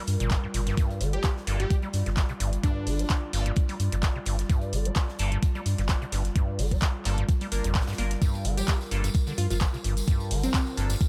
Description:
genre	acid house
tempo	129 BPM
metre	4/4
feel	swing 54% on 16ths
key	G minor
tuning	A4 = 440 Hz
part	warbly tape-like pad	sustained chords	0.0-11.1 s	G3 to D5	-40 LUFS	equal	chorus, built-in reverb, sidechain pumping
part	deep acid bass	riff	0.0-11.0 s	F2 to Bb3	-36 LUFS	equal	overdrive, lush chorus
part	round analog bass	bass	0.1-10.9 s	G1 to G2	-30 LUFS	equal	sidechain pumping
part	huge arena drum kit	drums	0.1-11.1 s	hi-hat, snare drum	-48 LUFS	equal	none
part	punchy analog drum machine	drums	0.1-11.1 s	handclaps, hi-hat	-37 LUFS	equal	none
part	electronic kick drum	drums	0.3-11.1 s	none	-27 LUFS	equal	overdrive
part	plucky unison lead	melody	1.1-3.3, 8.6-10.9 s	C4 to G4	-37 LUFS	equal	tape echo
part	band-passed chord stab	stabs	1.5-10.9 s	Bb3 to Bb4	-41 LUFS	equal	phaser, tape echo
part	tambourine	percussion	8.2-11.1 s	none	-42 LUFS	equal	none
room	little or no reverb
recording	none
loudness	-27 LUFS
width	mono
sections	0.0-11.1 A section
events	none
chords	0.0 Gm7

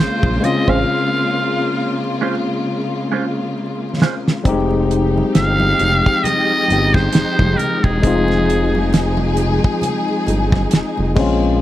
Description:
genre	R&B, neo-soul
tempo	67 BPM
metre	4/4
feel	swing 57% on 16ths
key	F minor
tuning	A4 = 440 Hz
part	trumpet with metal mute	melody	0.0-9.2 s	Ab4 to F5	-19 LUFS	right 1 dB	slapback echo
part	overdriven tine electric piano	accompaniment	0.0-11.6 s	G3 to G4	-20 LUFS	left 4 dB	none
part	warm symphonic string section	sustained chords	0.0-11.6 s	Bb2 to Ab4	-22 LUFS	equal	none
part	smooth gliding synth bass	bass	0.0-11.6 s	E1 to Bb1	-19 LUFS	equal	none
part	damped 70s drum kit	drums	0.0-11.4 s	crash cymbal, hi-hat, kick drum, snare drum	-16 LUFS	right 1 dB	none
part	congas	percussion	0.2-11.4 s	none	-27 LUFS	right 2 dB	none
part	mellow electric guitar	second line	0.7-4.1 s	Ab3 to C5	-23 LUFS	right 7 dB	wah
room	small room ambience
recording	vinyl crackle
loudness	-14 LUFS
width	side -13 dB against mid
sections	0.0-4.5 A section; 4.5-11.6 A section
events	break 0.9-4.5; drum fill 2.7-4.5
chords	0.0 Bbm9; 4.5 Fm9

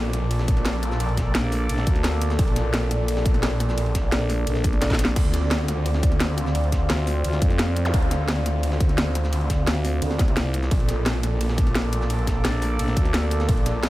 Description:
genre	dark technical drum and bass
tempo	173 BPM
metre	4/4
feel	straight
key	unclear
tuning	A4 = 440 Hz
part	sweeping resonant pad	sustained chords	0.0-13.9 s	Bb3 to D5	-29 LUFS	right 1 dB	chorus, sidechain pumping
part	snarling distorted saw bass	bass	0.0-13.9 s	Bb1 to D2	-24 LUFS	equal	distortion, tube saturation, sidechain pumping
part	breakbeat sampler-style drum kit	drums	0.1-13.9 s	ride cymbal, snare drum	-34 LUFS	equal	none
part	drum and bass drum kit	drums	0.1-13.9 s	crash cymbal, hi-hat, ride cymbal, shaker, snare drum	-28 LUFS	equal	overdrive
part	electronic kick drum	drums	0.5-13.6 s	none	-22 LUFS	equal	none
part	growling FM bass	bass	1.3-13.5 s	Bb1 to F2	-23 LUFS	equal	none
part	zap	sound effects	7.9 s	none	-32 LUFS	equal	none
room	little or no reverb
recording	none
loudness	-20 LUFS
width	side -17 dB against mid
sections	0.0-13.9 A section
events	drum fill 4.8-5.2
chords	0.0 Bbmaj7; 5.2 Dm7; 10.7 Bbmaj7

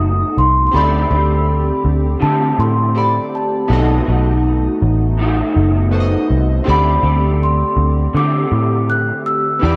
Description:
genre	indie pop, bedroom pop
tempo	81 BPM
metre	4/4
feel	swing 55% on 16ths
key	unclear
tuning	A4 = 440 Hz
part	large celesta	melody	0.0-9.8 s	A5 to F#6	-21 LUFS	equal	lush chorus
part	chorused retro synth keys	accompaniment	0.0-9.8 s	B3 to D#5	-28 LUFS	equal	cassette tape
part	electric guitar through a small old amp	accompaniment	0.0-9.8 s	B2 to B4	-24 LUFS	equal	ensemble chorus, warbly pitch drift
part	warbly tape-like pad	sustained chords	0.0-9.8 s	D3 to G4	-27 LUFS	equal	chorus, built-in reverb
part	vintage muted picked electric bass	bass	0.0-9.8 s	F#1 to D3	-18 LUFS	equal	none
room	digital ambience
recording	none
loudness	-15 LUFS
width	mono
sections	0.0-9.8 A section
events	none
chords	0.0 B7; 0.7 D7sus4; 3.7 B7; 6.7 D7sus4

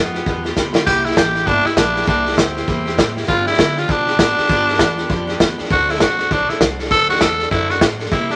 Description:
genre	rockabilly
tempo	199 BPM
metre	4/4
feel	swing 61% on 8ths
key	G mixolydian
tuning	A4 = 440 Hz
part	raspy tenor saxophone	melody	0.0-8.4 s	B3 to A4	-20 LUFS	equal	none
part	picked steel-string acoustic guitar	accompaniment	0.0-8.4 s	G2 to A4	-27 LUFS	equal	none
part	upright bass	bass	0.0-8.4 s	G1 to D3	-29 LUFS	equal	none
part	vintage drum kit	drums	0.1-8.3 s	hi-hat, kick drum, snare drum, splash cymbal	-20 LUFS	equal	none
room	light reverb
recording	none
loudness	-16 LUFS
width	mono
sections	0.0-8.4 A section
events	drum fill 0.6-0.9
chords	0.0 G7; 0.9 C7; 3.3 G7; 5.7 D7

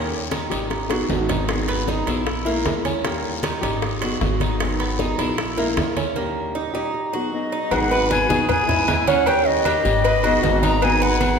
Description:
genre	latin, Cuban son and guajira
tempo	154 BPM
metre	4/4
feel	straight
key	G# minor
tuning	A4 = 440 Hz
part	nylon-string guitar	accompaniment	0.0-11.4 s	D#3 to G#4	-26 LUFS	left 2 dB	none
part	Cuban tres	arpeggios	0.0-11.4 s	A#3 to B4	-24 LUFS	right 4 dB	none
part	upright bass	bass	0.0-11.3 s	G#1 to D#2	-26 LUFS	equal	none
part	bongos and cowbell	percussion	0.1-11.4 s	none	-30 LUFS	left 5 dB	none
part	congas	percussion	0.1-11.4 s	none	-30 LUFS	equal	none
part	guiro	percussion	0.3-11.4 s	none	-34 LUFS	left 5 dB	none
part	timbales and agogo bells	percussion	0.3-11.4 s	none	-28 LUFS	right 4 dB	none
part	breathy bright jazz flute	melody	7.3-11.4 s	D#5 to A#5	-21 LUFS	left 4 dB	none
room	wet concert hall reverb, RT60 2.1 s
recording	recorded in a church or concert hall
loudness	-18 LUFS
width	side -6 dB against mid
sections	0.0-7.7 A section; 7.7-11.4 B section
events	drum fill 0.7-1.5; break 6.2-7.7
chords	0.0 D#7; 0.7 G#m7; 2.3 A#m7b5; 3.0 D#7; 3.8 G#m7; 5.4 A#m7b5; 6.2 D#7; 6.9 G#m7; 8.5 A#m7b5; 9.3 D#7; 10.0 G#m7

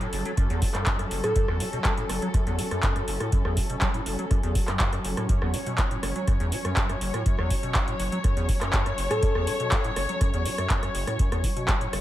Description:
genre	acid house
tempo	122 BPM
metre	4/4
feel	straight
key	F# minor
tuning	A4 = 440 Hz
part	dark chamber string section	sustained chords	0.0-12.0 s	F#3 to C#5	-32 LUFS	left 1 dB	sidechain pumping
part	liquid acid bass	riff	0.0-12.0 s	F#1 to F#3	-30 LUFS	equal	tube saturation, lush chorus, tape echo
part	booming analog drum machine	drums	0.0-12.0 s	handclaps, hi-hat, rim click	-30 LUFS	equal	overdrive
part	electronic kick drum	drums	0.4-11.8 s	none	-25 LUFS	equal	none
part	soft struck synth lead	melody	1.2-1.9, 9.1-9.8 s	A4	-31 LUFS	left 1 dB	chorus, tape echo
room	light reverb, digital ambience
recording	none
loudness	-23 LUFS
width	side -14 dB against mid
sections	0.0-12.0 A section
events	none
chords	0.0 F#m

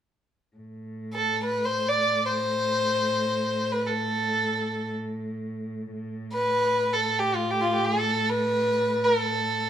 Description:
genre	turkish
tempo	free time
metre	none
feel	none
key	A makam ussak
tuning	A4 = 441 Hz
part	rich cello	drone	0.6-9.7 s	A2	-32 LUFS	right 1 dB	none
part	warm violin	melody	1.1-9.7 s	F4 to D5	-23 LUFS	equal	none
room	wet studio reverb, RT60 0.8 s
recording	band playing live in one room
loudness	-23 LUFS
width	side -10 dB against mid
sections	0.6-9.7 A section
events	none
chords	none

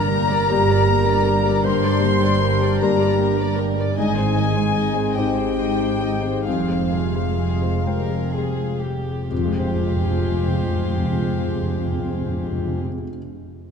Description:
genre	cinematic, emotional film score for orchestra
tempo	40-53 BPM (dotted quarters)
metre	6/8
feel	rubato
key	F dorian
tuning	A4 = 441 Hz
part	warm symphonic violin section	melody	0.0-12.8 s	G4 to Eb5	-32 LUFS	left 3 dB	none
part	warm violin	melody	0.0-12.8 s	F5 to C6	-31 LUFS	left 7 dB	none
part	mellow clarinet	second line	0.0-12.8 s	F4 to C5	-30 LUFS	right 1 dB	none
part	silver concert flute	second line	0.0-12.8 s	C5 to C6	-30 LUFS	left 3 dB	none
part	warm chamber violin section	second line	0.0-12.8 s	Ab4 to C6	-33 LUFS	equal	none
part	dark studio viola section	accompaniment	0.0-12.8 s	G3 to Bb4	-29 LUFS	equal	none
part	felt-muted upright piano	accompaniment	0.0-13.7 s	F2 to G5	-27 LUFS	left 2 dB	none
part	mellow French horn section	sustained chords	0.0-12.8 s	G3 to Ab4	-27 LUFS	left 5 dB	none
part	concert harp	arpeggios	0.0-13.2 s	F2 to G5	-29 LUFS	left 6 dB	none
part	dark chamber cello section	bass	0.0-12.8 s	F2 to Ab2	-26 LUFS	right 4 dB	none
part	dark symphonic double bass section	bass	0.0-12.8 s	F1 to Ab1	-27 LUFS	right 4 dB	none
part	timpani	percussion	9.3-12.8 s	F2	-25 LUFS	equal	none
room	wet concert hall reverb, RT60 2.2 s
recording	dark, warm production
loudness	-18 LUFS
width	side -6 dB against mid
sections	0.0-9.3 A section; 9.3-12.2 B section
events	slowing down 2.8-9.3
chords	0.0 Gm; 4.0 Ab; 6.5 Fmadd9

